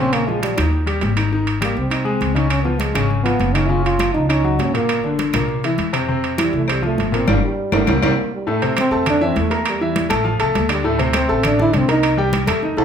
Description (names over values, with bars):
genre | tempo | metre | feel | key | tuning
Afro-Cuban jazz | 202 BPM | 4/4 | straight | F major | A4 = 441 Hz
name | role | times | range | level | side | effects
dark trombone | melody | 0.0-12.2 s | Gb3 to F4 | -21 LUFS | right 2 dB | none
clear concert grand piano | accompaniment | 0.0-12.8 s | A2 to Bb5 | -20 LUFS | left 2 dB | none
upright bass | bass | 0.0-12.8 s | Gb1 to F2 | -22 LUFS | equal | none
claves | percussion | 0.1-12.6 s | none | -31 LUFS | left 4 dB | none
congas | percussion | 0.1-12.8 s | none | -27 LUFS | left 1 dB | none
timbales | percussion | 0.1-12.8 s | none | -24 LUFS | right 5 dB | none
room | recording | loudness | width
wet large studio reverb, RT60 0.8 s | band playing live in one room | -16 LUFS | side -8 dB against mid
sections
0.0-8.5 A section; 8.5-12.8 B section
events
drum fill 7.3-8.5; band accent 7.3-8.5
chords
0.1 Bbm; 0.7 Eb; 1.3 Abmaj7; 2.5 Db7; 3.7 Gbmaj7; 4.9 Gm; 5.5 C7; 6.1 Fmaj7; 7.3 Gm; 7.9 C5; 8.5 Fmaj7; 9.7 Edim; 10.3 F69/A; 10.8 D5; 12.0 C5